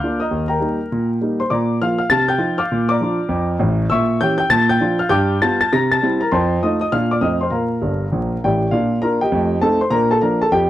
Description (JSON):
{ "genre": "jazz, stride piano", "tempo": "200 BPM", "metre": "4/4", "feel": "swing 65% on 8ths", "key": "Bb major", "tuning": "A4 = 439 Hz", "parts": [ { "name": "warm concert grand piano", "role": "solo", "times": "0.0-10.7 s", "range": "G1 to Bb6", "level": "-15 LUFS", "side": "equal", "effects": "none" } ], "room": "light reverb", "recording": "dry, close 1970s-style studio recording, vinyl crackle", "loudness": "-15 LUFS", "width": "side -13 dB against mid", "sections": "0.0-8.7 A section; 8.7-10.7 B section", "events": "grand piano fill 7.8-8.7", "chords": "0.3 Eb; 1.5 Bb; 2.1 F7/C; 2.7 Bb; 3.9 Bbdim7; 4.5 Bb; 5.1 G7; 5.7 C7; 6.3 F7; 6.9 Bb; 7.2 F7; 7.5 Bb; 9.3 F9; 9.9 Bb" }